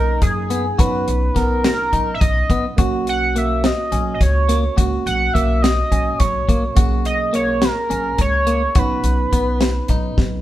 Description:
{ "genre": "progressive instrumental, band music in an uneven meter", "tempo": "211 BPM (eighths)", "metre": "7/8", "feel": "straight", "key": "B major", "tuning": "A4 = 440 Hz", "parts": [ { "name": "sync lead", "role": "melody", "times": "0.0-10.4 s", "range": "G#4 to F#5", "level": "-21 LUFS", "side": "right 1 dB", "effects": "chorus" }, { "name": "tine electric piano", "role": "accompaniment", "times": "0.0-10.4 s", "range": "A#3 to G#4", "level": "-27 LUFS", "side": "right 6 dB", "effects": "none" }, { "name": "clean electric guitar", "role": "arpeggios", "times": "0.0-10.2 s", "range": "A#3 to F#4", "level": "-26 LUFS", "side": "left 3 dB", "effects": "spring reverb" }, { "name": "upright bass", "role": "bass", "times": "0.0-10.4 s", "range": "B1 to F#2", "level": "-21 LUFS", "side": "equal", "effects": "none" }, { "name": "deep reggae drum kit", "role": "drums", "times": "0.2-10.3 s", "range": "hi-hat, kick drum, snare drum", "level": "-18 LUFS", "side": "equal", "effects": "none" } ], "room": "light reverb", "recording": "band playing live in one room", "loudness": "-15 LUFS", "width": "side -14 dB against mid", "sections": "0.0-10.4 A section", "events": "drum fill 10.2", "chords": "0.0 Bmaj7; 2.8 F#/B; 8.8 B" }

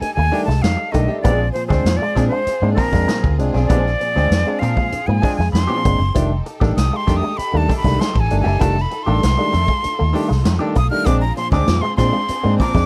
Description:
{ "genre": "funk", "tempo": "98 BPM", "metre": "4/4", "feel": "straight", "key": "unclear", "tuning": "A4 = 441 Hz", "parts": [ { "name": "breathy bright silver concert flute", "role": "melody", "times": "0.0-12.9 s", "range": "Bb4 to F6", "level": "-24 LUFS", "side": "equal", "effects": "none" }, { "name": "hollow-body jazz guitar", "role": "accompaniment", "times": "0.0-12.8 s", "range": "Eb3 to Bb4", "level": "-29 LUFS", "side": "equal", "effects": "wah" }, { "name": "clear studio string section", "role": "sustained chords", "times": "0.0-12.9 s", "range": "G3 to A4", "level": "-34 LUFS", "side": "equal", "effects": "none" }, { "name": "barky tine electric piano", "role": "stabs", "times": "0.0-12.9 s", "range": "Bb2 to D4", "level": "-26 LUFS", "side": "equal", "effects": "none" }, { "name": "vintage muted fingered electric bass", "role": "bass", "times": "0.0-12.9 s", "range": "F1 to Bb2", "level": "-21 LUFS", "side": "equal", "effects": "none" }, { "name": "swinging big-band drum kit", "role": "drums", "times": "0.0-12.9 s", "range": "hi-hat, kick drum, snare drum", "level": "-23 LUFS", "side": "equal", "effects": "none" }, { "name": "electric guitar with an envelope filter", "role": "riff", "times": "0.2-12.9 s", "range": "F3 to C4", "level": "-30 LUFS", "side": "equal", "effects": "analog chorus" } ], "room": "little or no reverb", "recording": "none", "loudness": "-18 LUFS", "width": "mono", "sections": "0.0-12.9 A section", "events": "flute solo 0.0-12.9", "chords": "0.0 F13; 1.2 Bb9; 6.2 F13; 11.1 Bb9" }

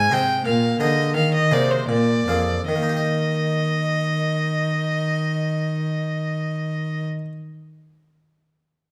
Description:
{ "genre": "classical, baroque-style sonata movement with continuo", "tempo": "75-90 BPM", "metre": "3/4", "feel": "straight", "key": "Eb major", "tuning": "A4 = 440 Hz", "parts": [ { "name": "clear violin", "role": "melody", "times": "0.0-7.1 s", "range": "C5 to Ab5", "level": "-26 LUFS", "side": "equal", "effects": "none" }, { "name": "harpsichord", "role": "accompaniment", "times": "0.0-7.3 s", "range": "F2 to Eb5", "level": "-27 LUFS", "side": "equal", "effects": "none" }, { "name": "warm cello", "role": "bass", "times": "0.0-7.0 s", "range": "F2 to Eb3", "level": "-25 LUFS", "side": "equal", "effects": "none" } ], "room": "moderate recital hall reverb, RT60 1.5 s", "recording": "none", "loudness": "-22 LUFS", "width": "mono", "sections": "0.0-2.7 A section; 2.7-7.5 B section", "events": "slowing down 0.0-2.7", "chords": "0.5 Bb7sus4; 1.9 Bb7; 2.7 Eb" }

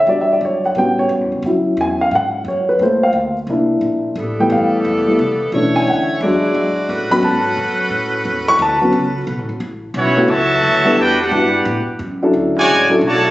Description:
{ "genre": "jazz, big band swing", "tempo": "176 BPM", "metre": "4/4", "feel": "swing 62% on 8ths", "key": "A major", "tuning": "A4 = 439 Hz", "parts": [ { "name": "dark baby grand piano", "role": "accompaniment", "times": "0.0-13.0 s", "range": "E3 to C#6", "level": "-15 LUFS", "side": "left 1 dB", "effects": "none" }, { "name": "upright bass", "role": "bass", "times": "0.0-13.3 s", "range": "F1 to A2", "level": "-26 LUFS", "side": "equal", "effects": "none" }, { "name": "clear saxophone section", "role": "sustained chords", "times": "4.2-9.6 s", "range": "E3 to D5", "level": "-20 LUFS", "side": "equal", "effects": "none" }, { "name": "bright trombone section", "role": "second line", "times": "9.9-13.3 s", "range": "A2 to G4", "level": "-21 LUFS", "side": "equal", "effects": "none" }, { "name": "clear trumpet section", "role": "melody", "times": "10.0-13.3 s", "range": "B3 to A5", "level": "-14 LUFS", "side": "equal", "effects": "none" } ], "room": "wet large studio reverb, RT60 1.5 s", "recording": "recorded on a phone in the room, studio reverb, nothing above 7.9 kHz", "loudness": "-13 LUFS", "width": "side -16 dB against mid", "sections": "0.0-9.6 A section; 9.6-13.3 B section", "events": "grand piano solo 0.0-9.6", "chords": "0.1 Em9; 0.8 A13; 1.4 E69; 2.8 Gm7; 3.5 C9; 4.2 Fmaj9#11; 5.5 Bm11; 6.2 E9; 6.9 A69; 11.0 Em9; 11.7 A13; 12.3 Dmaj7" }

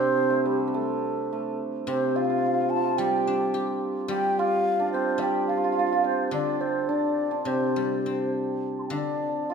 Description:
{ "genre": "chinese traditional, Chinese chamber ensemble", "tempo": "106 BPM", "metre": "4/4", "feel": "rubato", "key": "C zhi mode", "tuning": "A4 = 440 Hz", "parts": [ { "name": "mellow xiao", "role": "melody", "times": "0.0-9.5 s", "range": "G4 to C6", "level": "-28 LUFS", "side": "equal", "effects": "none" }, { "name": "hammered dulcimer", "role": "second line", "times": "0.0-9.5 s", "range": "G3 to G4", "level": "-27 LUFS", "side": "right 5 dB", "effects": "none" }, { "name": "guzheng", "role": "accompaniment", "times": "0.0-9.5 s", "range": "C3 to G4", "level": "-29 LUFS", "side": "left 2 dB", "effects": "none" } ], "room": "moderate recital hall reverb, RT60 1.9 s", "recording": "minimal, uncompressed stereo recording", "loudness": "-23 LUFS", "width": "side -6 dB against mid", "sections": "0.0-9.5 A section", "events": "none", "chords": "none" }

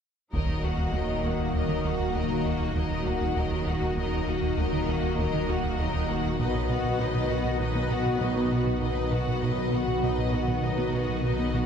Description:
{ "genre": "cinematic, hybrid orchestral and electronic film score", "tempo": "99 BPM", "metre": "5/4", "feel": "straight", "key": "Eb minor", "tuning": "A4 = 439 Hz", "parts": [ { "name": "clear symphonic violin section", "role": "second line", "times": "0.3-11.7 s", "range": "Gb4 to Gb5", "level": "-33 LUFS", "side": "left 4 dB", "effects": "none" }, { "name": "warm symphonic viola section", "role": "accompaniment", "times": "0.3-11.7 s", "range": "Gb3 to Gb4", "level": "-33 LUFS", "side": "equal", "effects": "none" }, { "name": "phased analog pad", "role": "sustained chords", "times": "0.3-11.7 s", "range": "Eb3 to Eb5", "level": "-31 LUFS", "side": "equal", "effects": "phaser, chorus" }, { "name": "rubbery square bass", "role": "riff", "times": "0.3-11.6 s", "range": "Eb2 to B3", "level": "-30 LUFS", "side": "right 1 dB", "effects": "none" }, { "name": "dark symphonic cello section", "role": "bass", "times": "0.3-11.7 s", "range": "B2 to Eb3", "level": "-34 LUFS", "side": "right 3 dB", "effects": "none" }, { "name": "detuned saw bass", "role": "bass", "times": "0.3-11.7 s", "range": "Eb1 to B1", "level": "-34 LUFS", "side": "left 1 dB", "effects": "none" }, { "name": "taiko ensemble", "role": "drums", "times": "0.3-1.5, 6.4-7.6 s", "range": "none", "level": "-35 LUFS", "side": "left 1 dB", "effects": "none" } ], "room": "wet concert hall reverb, RT60 2.3 s", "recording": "heard from further back in the room", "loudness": "-25 LUFS", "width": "side -7 dB against mid", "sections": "0.3-11.7 A section", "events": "none", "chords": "0.3 Ebm; 6.4 B" }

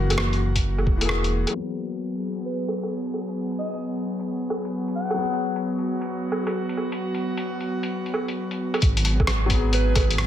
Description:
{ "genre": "future garage", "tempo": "132 BPM", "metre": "4/4", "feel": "swing 66% on 16ths", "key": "G# minor", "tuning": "A4 = 445 Hz", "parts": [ { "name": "felt-muted upright piano", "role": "accompaniment", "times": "0.0-10.3 s", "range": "E3 to G#4", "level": "-33 LUFS", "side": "left 6 dB", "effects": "sidechain pumping, low-pass filter, dub echo" }, { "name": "airy breathy pad", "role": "sustained chords", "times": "0.0-10.3 s", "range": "E3 to G#4", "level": "-28 LUFS", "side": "equal", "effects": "chorus, sidechain pumping" }, { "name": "dark detuned saw bass", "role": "bass", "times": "0.0-1.5, 8.8-10.3 s", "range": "E1 to G#1", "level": "-23 LUFS", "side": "equal", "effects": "tube saturation, sidechain pumping" }, { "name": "lo-fi sampler-style drum kit", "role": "drums", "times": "0.1-10.3 s", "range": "hi-hat, rim click, woodblock", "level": "-28 LUFS", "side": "equal", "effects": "low-pass filter on hats, low-pass filter on perc, low-pass filter on snare, low-pass filter on room" }, { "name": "electronic kick drum", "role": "drums", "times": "0.6-1.0, 8.8-10.1 s", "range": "none", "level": "-22 LUFS", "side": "equal", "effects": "none" }, { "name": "breathy alto saxophone", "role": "melody", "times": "2.5-5.6, 9.7-10.1 s", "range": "B4 to F#5", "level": "-30 LUFS", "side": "equal", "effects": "ping-pong delay" } ], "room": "light reverb, digital ambience", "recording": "low-pass filter", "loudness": "-22 LUFS", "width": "side -11 dB against mid", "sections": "0.0-1.5 A section; 1.5-8.8 B section; 8.8-10.3 C section", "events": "filter sweep 1.5-8.8", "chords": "0.0 F#7; 1.5 G#m7" }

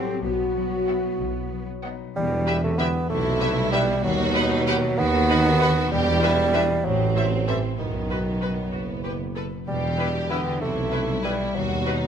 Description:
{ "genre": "cinematic, playful, whimsical film cue", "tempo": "64 BPM (dotted quarters)", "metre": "6/8", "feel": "straight", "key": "E minor", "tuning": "A4 = 442 Hz", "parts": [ { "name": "rich studio violin section", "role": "melody", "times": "0.0-11.9 s", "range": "B4 to F#5", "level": "-33 LUFS", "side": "left 4 dB", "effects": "none" }, { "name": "rich studio violin section", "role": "second line", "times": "0.0-12.1 s", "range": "B3 to F#5", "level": "-30 LUFS", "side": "left 1 dB", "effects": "none" }, { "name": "clear studio viola section", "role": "accompaniment", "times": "0.0-11.9 s", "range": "B3 to C5", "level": "-32 LUFS", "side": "equal", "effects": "none" }, { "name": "warm French horn section", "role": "sustained chords", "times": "0.0-1.8 s", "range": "F#4 to G4", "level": "-26 LUFS", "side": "left 1 dB", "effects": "none" }, { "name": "concert harp", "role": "arpeggios", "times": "0.0-12.1 s", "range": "A2 to C5", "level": "-31 LUFS", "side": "left 11 dB", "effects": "none" }, { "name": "clear studio double bass section", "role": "bass", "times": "0.0-12.1 s", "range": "F#1 to E2", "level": "-29 LUFS", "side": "right 3 dB", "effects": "none" }, { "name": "rich studio cello section", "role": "bass", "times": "0.0-12.1 s", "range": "F#2 to C4", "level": "-29 LUFS", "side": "right 2 dB", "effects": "none" }, { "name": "mellow bassoon", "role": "accompaniment", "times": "2.2-12.1 s", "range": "D#3 to B3", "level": "-25 LUFS", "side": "right 2 dB", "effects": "none" }, { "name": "mellow tuba", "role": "bass", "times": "2.2-12.1 s", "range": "E1 to D#2", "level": "-29 LUFS", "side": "right 4 dB", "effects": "none" } ], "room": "moderate scoring stage reverb, RT60 1.9 s", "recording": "none", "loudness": "-21 LUFS", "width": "side -8 dB against mid", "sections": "0.0-2.2 A section; 2.2-12.1 B section", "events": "none", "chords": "0.2 Bsus4; 1.2 B; 2.2 Em; 4.0 B/D#; 5.9 Em; 6.8 Am; 7.8 B; 9.7 Em; 11.5 B/D#" }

